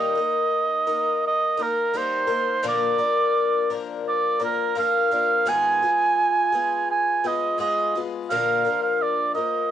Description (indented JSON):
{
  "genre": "folk",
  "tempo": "85 BPM",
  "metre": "4/4",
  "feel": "straight",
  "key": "unclear",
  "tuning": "A4 = 441 Hz",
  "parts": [
    { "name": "warm oboe", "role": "melody", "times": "0.0-9.7 s", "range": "Bb4 to Ab5", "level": "-21 LUFS", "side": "right 4 dB", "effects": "cassette tape" },
    { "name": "picked twelve-string acoustic guitar", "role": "accompaniment", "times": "0.0-9.7 s", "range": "Ab2 to Bb4", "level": "-26 LUFS", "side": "left 8 dB", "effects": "none" }
  ],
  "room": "light reverb, studio ambience",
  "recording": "home recording on cassette, nothing above 10.4 kHz",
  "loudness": "-20 LUFS",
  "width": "side -10 dB against mid",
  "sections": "0.0-9.7 A section",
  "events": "none",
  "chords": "0.0 Eb; 2.6 Bb; 5.5 Abm6; 8.3 Bb"
}